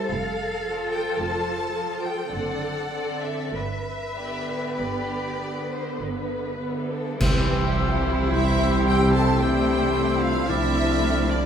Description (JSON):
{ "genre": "classical, slow romantic movement for symphony orchestra", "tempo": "48-57 BPM", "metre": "3/4", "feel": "rubato", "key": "C major", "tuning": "A4 = 441 Hz", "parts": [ { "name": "rich chamber violin section", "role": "melody", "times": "0.0-11.5 s", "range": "D5 to A5", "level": "-31 LUFS", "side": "left 2 dB", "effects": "none" }, { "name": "warm symphonic violin section", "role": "second line", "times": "0.0-11.5 s", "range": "C4 to D5", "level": "-31 LUFS", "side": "left 2 dB", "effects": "none" }, { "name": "warm symphonic viola section", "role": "accompaniment", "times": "0.0-11.5 s", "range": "D3 to F4", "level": "-29 LUFS", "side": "right 1 dB", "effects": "none" }, { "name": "dark studio cello section", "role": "bass", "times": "0.0-11.5 s", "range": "C3 to B4", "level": "-30 LUFS", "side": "right 1 dB", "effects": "none" }, { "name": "bright chamber double bass section", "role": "bass", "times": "0.1-11.5 s", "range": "F1 to C2", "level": "-29 LUFS", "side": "right 3 dB", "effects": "none" }, { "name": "cymbal swell, clash cymbals and concert bass drum", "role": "percussion", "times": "3.5-9.4 s", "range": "none", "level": "-30 LUFS", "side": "equal", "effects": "none" }, { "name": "small flute group", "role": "second line", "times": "7.2-11.5 s", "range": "E6 to F6", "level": "-32 LUFS", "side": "left 1 dB", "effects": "none" }, { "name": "warm oboe", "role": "second line", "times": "7.2-11.5 s", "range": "C5 to D5", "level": "-30 LUFS", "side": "right 3 dB", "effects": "none" }, { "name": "mellow French horn section", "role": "sustained chords", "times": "7.2-11.5 s", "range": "E3 to D4", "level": "-27 LUFS", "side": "left 3 dB", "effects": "none" }, { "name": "timpani", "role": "percussion", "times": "7.2-11.5 s", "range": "C3", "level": "-30 LUFS", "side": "right 1 dB", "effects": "none" }, { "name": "dark clarinet", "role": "second line", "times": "8.3-11.5 s", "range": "D4 to A4", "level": "-28 LUFS", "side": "left 2 dB", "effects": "none" } ], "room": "moderate scoring stage reverb, RT60 1.6 s", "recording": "none", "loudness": "-22 LUFS", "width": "side -8 dB against mid", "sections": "0.0-7.2 A section; 7.2-11.5 A section", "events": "band accent 7.2-8.3", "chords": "0.1 F; 2.3 D7/F#; 3.5 G; 7.2 C; 10.5 Dm7/C" }